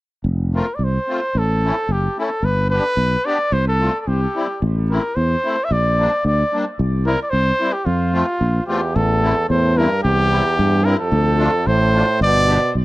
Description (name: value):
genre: alpine folk, alpine dance band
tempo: 110 BPM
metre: 2/4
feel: straight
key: F major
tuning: A4 = 441 Hz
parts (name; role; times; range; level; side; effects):
- sustaining fretless electric bass; bass; 0.2-12.8 s; F1 to G2; -18 LUFS; equal; analog chorus
- musette accordion; accompaniment; 0.5-12.6 s; G3 to G4; -24 LUFS; left 2 dB; none
- warm trumpet; melody; 0.6-12.7 s; F4 to E5; -19 LUFS; equal; analog delay
- warm euphonium; second line; 8.7-12.7 s; E2 to B2; -22 LUFS; right 3 dB; none
room: light reverb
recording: none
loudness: -16 LUFS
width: side -18 dB against mid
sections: 0.3-9.0 A section; 9.0-12.8 B section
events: none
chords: 0.3 F; 1.3 A; 2.4 G; 3.5 F/C; 4.1 C; 4.6 Am; 5.7 Gm/Bb; 6.8 C; 7.9 F; 9.0 Am; 10.1 C; 11.1 Dm; 12.2 G